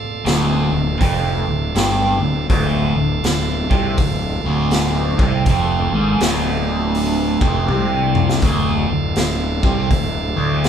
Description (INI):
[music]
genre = blues rock power trio and southern rock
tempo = 81 BPM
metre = 4/4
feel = swing 63% on 8ths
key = D minor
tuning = A4 = 440 Hz
[part]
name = bright tonewheel organ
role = sustained chords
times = 0.0-10.7 s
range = D4 to D5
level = -26 LUFS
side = right 6 dB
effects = overdrive, stopped rotary speaker
[part]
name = overdriven electric guitar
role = riff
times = 0.2-10.7 s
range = D2 to C3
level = -19 LUFS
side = equal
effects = phaser
[part]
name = fuzz fingered electric bass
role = bass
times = 0.3-10.7 s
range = D1 to C2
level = -22 LUFS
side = equal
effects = overdrive
[part]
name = raw garage drum kit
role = drums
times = 0.3-10.7 s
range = hi-hat, kick drum, snare drum, toms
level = -21 LUFS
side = equal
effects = none
[sound]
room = moderate large studio reverb, RT60 1.1 s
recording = band playing live in one room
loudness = -15 LUFS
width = side -8 dB against mid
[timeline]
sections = 0.0-10.7 A section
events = drum fill 7.7-8.4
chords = 0.0 Dm